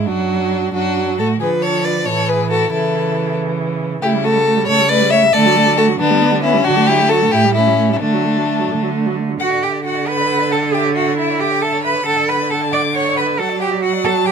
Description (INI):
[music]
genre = quick classical-period movement for string quartet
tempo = 91 BPM (dotted quarters)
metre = 6/8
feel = rubato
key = A major, D major from 4.0 s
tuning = A4 = 442 Hz
[part]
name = rich violin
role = melody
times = 0.0-14.3 s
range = A3 to D6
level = -21 LUFS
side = left 6 dB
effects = none
[part]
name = rich viola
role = accompaniment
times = 0.0-14.3 s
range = D3 to B3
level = -19 LUFS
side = right 4 dB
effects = none
[part]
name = rich cello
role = bass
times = 0.0-14.3 s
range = F#2 to D5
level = -20 LUFS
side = right 4 dB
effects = none
[part]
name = rich violin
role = second line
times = 0.1-14.3 s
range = D4 to F#5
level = -18 LUFS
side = left 3 dB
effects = none
[sound]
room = little or no reverb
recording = close, detailed microphones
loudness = -13 LUFS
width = side -6 dB against mid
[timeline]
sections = 0.0-9.4 A section; 9.4-14.3 B section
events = none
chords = 0.1 D/F#; 1.4 Dm; 2.1 A5; 2.7 A/C#; 4.0 A7/C#; 5.3 D; 6.0 G/D; 6.7 D; 7.3 A7; 8.0 D; 10.7 A7/D; 12.1 D; 13.4 D/F#